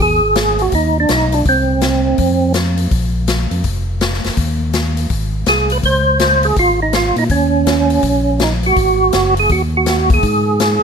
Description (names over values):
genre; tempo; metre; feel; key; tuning
soul jazz organ trio; 164 BPM; 4/4; swing 64% on 8ths; Ab mixolydian; A4 = 444 Hz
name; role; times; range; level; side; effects
percussive tonewheel organ; melody; 0.0-2.5, 5.5-10.8 s; C4 to C5; -14 LUFS; right 3 dB; slow rotary speaker, chorus vibrato
tonewheel organ; bass; 0.0-10.8 s; F1 to Bb2; -17 LUFS; equal; overdrive, chorus vibrato, slow rotary speaker
swinging big-band drum kit; drums; 0.4-10.7 s; hi-hat, kick drum, snare drum; -19 LUFS; left 3 dB; none
room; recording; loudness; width
light reverb; close, detailed microphones; -12 LUFS; side -6 dB against mid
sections
0.0-10.8 A section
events
none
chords
0.0 Ab5; 1.5 N.C.; 2.2 F5; 2.9 Bb5; 4.4 N.C.; 5.1 Ab; 5.8 Db5; 7.3 Eb5; 8.8 Ab5